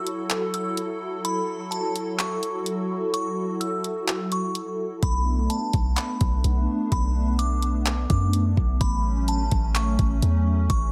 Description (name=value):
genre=hip hop, atmospheric cloud-rap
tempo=127 BPM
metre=4/4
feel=half-time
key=F# minor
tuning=A4 = 443 Hz
part: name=glassy synth bell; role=melody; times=0.0-10.9 s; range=A5 to E6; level=-34 LUFS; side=equal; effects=chorus, low-pass filter, delay
part: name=hollow soft pad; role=sustained chords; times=0.0-10.9 s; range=F#3 to A4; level=-30 LUFS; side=equal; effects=ensemble chorus, sidechain pumping
part: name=smooth R&B drum kit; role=drums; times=0.1-10.8 s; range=handclaps, hi-hat, kick drum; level=-29 LUFS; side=equal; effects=none
part: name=warm 808-style bass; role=bass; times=5.0-10.9 s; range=A1 to F#2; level=-25 LUFS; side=equal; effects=none
part: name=riser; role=sound effects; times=10.7-10.9 s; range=none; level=barely audible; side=none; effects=none
room=light reverb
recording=none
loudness=-25 LUFS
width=mono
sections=0.0-10.9 A section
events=break 0.0-5.0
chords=0.0 F#m7; 5.0 Bm7; 8.8 A6